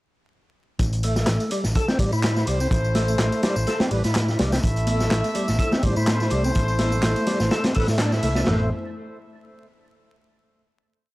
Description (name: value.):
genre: breakbeat, breaks.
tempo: 125 BPM.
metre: 4/4.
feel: swing 55% on 16ths.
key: unclear.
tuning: A4 = 440 Hz.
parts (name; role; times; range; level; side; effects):
picked electric bass; bass; 0.8-8.7 s; A1 to A2; -23 LUFS; equal; none.
crunchy breakbeat drum kit; drums; 0.8-8.6 s; crash cymbal, hi-hat, kick drum, snare drum, toms; -24 LUFS; equal; none.
garage drum kit; drums; 0.8-8.4 s; handclaps, ride cymbal, tambourine; -34 LUFS; equal; none.
percussive tonewheel organ; riff; 1.0-8.7 s; G3 to A4; -27 LUFS; equal; overdrive, chorus vibrato, slow rotary speaker, analog delay.
warm brass ensemble; stabs; 2.0-8.7 s; A3 to E5; -29 LUFS; equal; vintage 12-bit sampler grit, analog delay.
dark analog pad; sustained chords; 5.3-8.7 s; A3 to C5; -32 LUFS; right 1 dB; chorus, vintage 12-bit sampler grit, sidechain pumping.
congas; percussion; 4.9-8.5 s; none; -34 LUFS; left 1 dB; none.
room: little or no reverb.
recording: dry, gritty hardware recording, transformer saturation, vinyl crackle.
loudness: -19 LUFS.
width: side -18 dB against mid.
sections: 0.8-8.5 drop; 8.5-10.4 final chord.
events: drop 0.8-8.5; band accent 8.0.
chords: 0.8 Am.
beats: | 0.79 1.27 1.75 2.23 | 2.71 3.19 3.67 4.15 | 4.63 5.11 5.59 6.07 | 6.55 7.03 7.51 7.99 | 8.47.